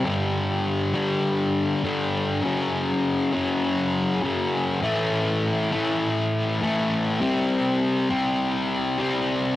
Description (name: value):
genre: rock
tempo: 100 BPM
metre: 4/4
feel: straight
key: unclear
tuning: A4 = 439 Hz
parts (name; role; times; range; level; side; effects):
- fuzz guitar; solo; 0.0-9.6 s; F#2 to C4; -21 LUFS; left 1 dB; distortion, cassette tape
room: moderate lush hall reverb, RT60 2.8 s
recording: home recording on cassette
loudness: -21 LUFS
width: side -14 dB against mid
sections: 0.0-9.6 A section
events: none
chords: 0.0 G5; 2.4 F#5; 4.8 A5; 7.2 C5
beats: | 0.05 0.64 1.24 1.84 | 2.44 3.03 3.63 4.23 | 4.83 5.42 6.02 6.62 | 7.21 7.81 8.41 9.00